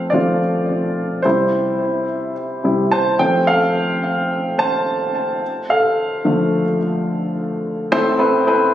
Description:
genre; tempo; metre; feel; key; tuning
pop; 108 BPM; 4/4; straight; unclear; A4 = 440 Hz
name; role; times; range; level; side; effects
warm baby grand piano; solo; 0.0-8.7 s; A1 to A5; -16 LUFS; equal; tape echo
room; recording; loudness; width
moderate large studio reverb, RT60 1.5 s; recorded on a phone in the room, studio reverb; -16 LUFS; side -12 dB against mid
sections
0.0-7.9 A section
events
grand piano solo 0.0-7.9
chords
0.0 F; 1.2 C; 3.2 F; 5.4 Dm; 7.9 Am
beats
0.14 0.69 | 1.25 1.80 2.36 2.91 | 3.47 4.02 4.58 5.13 | 5.69 6.24 6.80 7.35 | 7.91 8.46

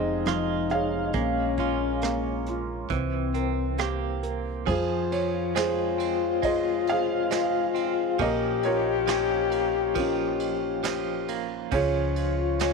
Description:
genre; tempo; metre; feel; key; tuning
acoustic folk-pop ballad; 68 BPM; 4/4; straight; F minor; A4 = 440 Hz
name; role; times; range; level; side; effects
felt-muted upright piano; melody; 0.0-12.7 s; C3 to F5; -29 LUFS; right 4 dB; tape echo
mellow French horn; second line; 0.0-12.7 s; C4 to G4; -28 LUFS; left 15 dB; none
direct-recorded clean electric guitar; arpeggios; 0.0-12.7 s; Eb3 to Ab4; -32 LUFS; right 15 dB; tremolo
upright bass; bass; 0.0-12.7 s; F1 to F2; -33 LUFS; equal; none
vintage brush drum kit; drums; 0.3-12.7 s; hi-hat, kick drum, ride cymbal, rim click, snare drum; -36 LUFS; right 4 dB; none
room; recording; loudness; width
light reverb, small room ambience; 1960s-style stereo with parts hard left and right; -24 LUFS; side -4 dB against mid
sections
0.0-4.7 A section; 4.7-12.7 B section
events
none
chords
0.0 Fm7; 1.1 Bbm7; 2.9 C7; 4.7 Fm; 8.2 Bbm; 11.7 Db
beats
0.27 | 1.15 2.03 2.91 3.79 | 4.68 5.56 6.44 7.32 | 8.20 9.08 9.96 10.84 | 11.72 12.60

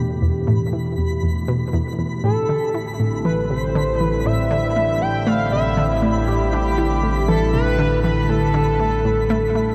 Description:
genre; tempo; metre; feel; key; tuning
ambient, sequencer-driven space music; 119 BPM; 4/4; straight; A minor; A4 = 440 Hz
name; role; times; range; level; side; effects
sweeping resonant pad; sustained chords; 0.0-9.7 s; A2 to G4; -26 LUFS; equal; chorus, phaser
analog pluck; riff; 0.0-9.7 s; E2 to E4; -25 LUFS; equal; chorus, delay
analog drone; bass; 0.0-9.7 s; A1 to E2; -28 LUFS; equal; chorus
twinkling granular texture; texture; 0.0-9.7 s; B5; -35 LUFS; equal; built-in reverb
pulse-width lead; melody; 2.2-9.7 s; G4 to G5; -24 LUFS; equal; chorus, delay
room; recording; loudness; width
wet huge ambient reverb, RT60 7.3 s; dark, warm production; -20 LUFS; mono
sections
0.0-9.7 A section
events
fade-in on synth drone 0.0-9.7; fade-in on synth texture 0.0-9.7; filter sweep on synth arpeggio sound 0.0-9.7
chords
0.0 Em; 2.2 Am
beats
| 0.22 0.73 1.23 1.74 | 2.24 2.75 3.25 3.75 | 4.26 4.76 5.27 5.77 | 6.28 6.78 7.28 7.79 | 8.29 8.80 9.30

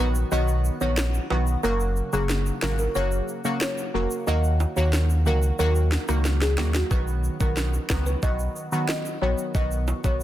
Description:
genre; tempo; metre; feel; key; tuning
dancehall; 91 BPM; 4/4; straight; unclear; A4 = 440 Hz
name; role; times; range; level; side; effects
folk marimba with medium mallets; melody; 0.0-10.2 s; Gb4 to D#5; -30 LUFS; equal; none
synth brass stab; accompaniment; 0.0-10.2 s; Db3 to F#4; -28 LUFS; equal; chorus, phaser
sub bass with octave; bass; 0.0-10.2 s; F1 to Eb2; -23 LUFS; equal; none
tube shaker and timbales; percussion; 0.2-10.2 s; none; -37 LUFS; right 4 dB; none
island pop drum kit; drums; 1.0-10.2 s; kick drum, rim click, snare drum; -28 LUFS; equal; none
room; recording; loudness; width
little or no reverb; dense, heavily limited modern master; -22 LUFS; side -13 dB against mid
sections
0.0-10.2 A section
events
break 0.0-6.9; drum fill 6.2-6.9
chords
0.0 B; 1.6 Gb; 4.3 Ebm; 6.9 B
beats
0.32 0.98 | 1.64 2.29 2.95 3.61 | 4.27 4.93 5.59 6.25 | 6.91 7.57 8.23 8.89 | 9.55 10.21

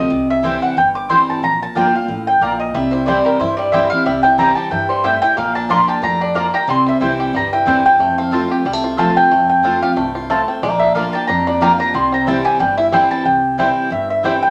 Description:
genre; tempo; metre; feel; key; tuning
bluegrass; 183 BPM; 4/4; swing 55% on 8ths; C mixolydian; A4 = 442 Hz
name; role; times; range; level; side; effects
mandolin; melody; 0.0-14.5 s; Bb4 to D6; -18 LUFS; equal; none
picked steel-string acoustic guitar; accompaniment; 0.0-14.5 s; F2 to F4; -23 LUFS; equal; none
upright bass; bass; 0.0-14.4 s; G1 to G2; -32 LUFS; equal; none
mandolin; stabs; 0.4-14.3 s; Bb3 to Bb5; -23 LUFS; equal; none
bluegrass banjo; arpeggios; 2.7-14.3 s; G3 to G4; -24 LUFS; equal; none
room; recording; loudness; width
wet studio reverb, RT60 0.7 s; none; -16 LUFS; mono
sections
0.0-13.3 A section; 13.3-14.5 B section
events
mandolin solo 0.0-13.3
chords
0.1 C; 1.4 Bb; 2.7 C; 5.4 Bb; 6.7 C; 8.0 F; 10.6 Bb; 11.9 C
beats
| 0.11 0.44 0.77 1.10 | 1.43 1.76 2.08 2.41 | 2.74 3.07 3.40 3.73 | 4.06 4.38 4.71 5.04 | 5.37 5.70 6.03 6.36 | 6.68 7.01 7.34 7.67 | 8.00 8.32 8.65 8.98 | 9.31 9.64 9.97 10.29 | 10.62 10.95 11.28 11.61 | 11.94 12.27 12.60 12.92 | 13.25 13.58 13.91 14.24

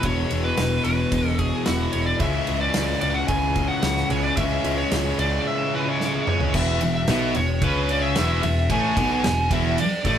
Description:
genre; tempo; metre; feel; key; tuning
quiet-loud alternative rock; 111 BPM; 4/4; straight; E mixolydian; A4 = 443 Hz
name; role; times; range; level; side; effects
smooth overdriven lead guitar; melody; 0.0-10.2 s; F#4 to G#5; -26 LUFS; equal; none
electric guitar at the edge of break-up; arpeggios; 0.0-2.2 s; E2 to E4; -31 LUFS; right 4 dB; tremolo
thick fuzz guitar; riff; 0.0-10.2 s; E2 to C#4; -26 LUFS; left 6 dB; distortion
modern bright picked electric bass; bass; 0.0-10.2 s; E1 to C#2; -26 LUFS; right 1 dB; none
loose indie drum kit; drums; 0.0-10.2 s; crash cymbal, kick drum, ride cymbal, snare drum, toms; -28 LUFS; right 1 dB; none
thick fuzz guitar; riff; 2.2-10.2 s; E2 to C#4; -28 LUFS; right 7 dB; distortion
thick fuzz guitar; riff; 6.6-10.2 s; E2 to C#4; -29 LUFS; right 1 dB; none
room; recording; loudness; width
moderate studio reverb, RT60 0.6 s; band playing live in one room; -20 LUFS; side -9 dB against mid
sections
0.0-6.5 A section; 6.5-10.2 B section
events
drum fill 6.0-6.5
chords
0.0 E6; 2.2 C#m; 6.5 E5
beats
| 0.04 0.59 1.13 1.67 | 2.21 2.75 3.29 3.84 | 4.38 4.92 5.46 6.00 | 6.54 7.08 7.62 8.16 | 8.70 9.24 9.78

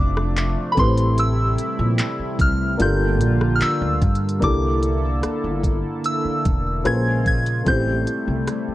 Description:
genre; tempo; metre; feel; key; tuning
contemporary R&B; 74 BPM; 4/4; straight; unclear; A4 = 441 Hz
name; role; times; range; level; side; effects
soft synth bell; melody; 0.0-8.7 s; B5 to Ab6; -25 LUFS; equal; chorus, tape echo
dark grand piano; accompaniment; 0.0-8.7 s; A3 to C5; -26 LUFS; left 2 dB; none
chorused pulse-width pad; sustained chords; 0.0-8.7 s; C3 to A4; -27 LUFS; right 1 dB; sidechain pumping
upright bass; bass; 0.0-8.7 s; E1 to G2; -21 LUFS; equal; none
smooth R&B drum kit; drums; 0.2-8.7 s; handclaps, hi-hat, kick drum, rim click; -22 LUFS; equal; vintage 12-bit sampler grit
room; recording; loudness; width
digital ambience; dry, gritty hardware recording; -18 LUFS; side -15 dB against mid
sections
0.0-4.4 A section; 4.4-8.7 B section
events
none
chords
0.0 Dm7; 0.8 Am7; 2.8 Gm7; 4.4 C13; 6.9 Bbm7; 7.7 Am7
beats
0.37 | 1.18 1.99 2.80 3.61 | 4.42 5.23 6.04 6.86 | 7.67 8.48

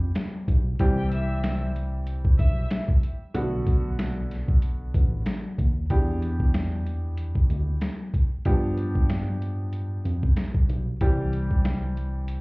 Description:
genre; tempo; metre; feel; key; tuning
hip hop, boom-bap hip-hop; 94 BPM; 4/4; swing 56% on 16ths; E minor; A4 = 440 Hz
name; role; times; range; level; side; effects
warm upright piano; accompaniment; 0.0-12.4 s; D3 to G4; -32 LUFS; equal; cassette tape, high-pass filter, low-pass filter
tine electric piano; bass; 0.0-12.4 s; A1 to G2; -27 LUFS; equal; overdrive, fast stereo tremolo
boom bap sampler-style drum kit; drums; 0.2-12.4 s; hi-hat, kick drum, snare drum; -23 LUFS; equal; none
warm studio violin section; melody; 1.0-2.7 s; G4 to E6; -36 LUFS; left 1 dB; high-pass filter, low-pass filter, ping-pong delay
room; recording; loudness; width
digital ambience; heard muffled through a wall, club reverb, EQ; -22 LUFS; side -26 dB against mid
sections
0.0-5.9 A section; 5.9-12.4 B section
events
none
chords
0.0 G7; 0.8 C; 3.3 Bm7; 5.9 Em7; 8.5 G7; 11.0 C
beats
0.16 | 0.80 1.43 2.07 2.71 | 3.35 3.99 4.63 5.26 | 5.90 6.54 7.18 7.82 | 8.46 9.09 9.73 10.37 | 11.01 11.65 12.29

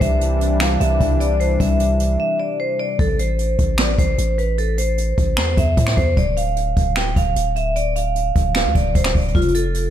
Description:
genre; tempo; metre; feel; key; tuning
hip hop, trap; 151 BPM; 4/4; half-time; A minor; A4 = 440 Hz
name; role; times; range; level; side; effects
vibraphone with hard mallets; melody; 0.0-9.9 s; F4 to G5; -21 LUFS; right 1 dB; low-pass filter, diffuse ambient delay
warm analog pad; sustained chords; 0.0-3.0 s; C3 to D4; -24 LUFS; left 2 dB; chorus
long sustained 808-style bass; bass; 0.0-9.9 s; D1 to A2; -20 LUFS; equal; none
jazz brush drum kit; drums; 0.0-9.8 s; finger snaps, hi-hat, kick drum, snare drum; -20 LUFS; equal; none
room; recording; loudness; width
light reverb, small room ambience; none; -16 LUFS; side -10 dB against mid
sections
0.0-3.0 A section; 3.0-9.9 B section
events
break 2.2-3.0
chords
0.0 Cadd9; 3.0 Am; 6.2 Dm; 9.3 F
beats
0.21 0.61 1.01 | 1.40 1.80 2.20 2.60 | 2.99 3.39 3.79 4.18 | 4.58 4.98 5.38 5.77 | 6.17 6.57 6.97 7.36 | 7.76 8.16 8.55 8.95 | 9.35 9.75

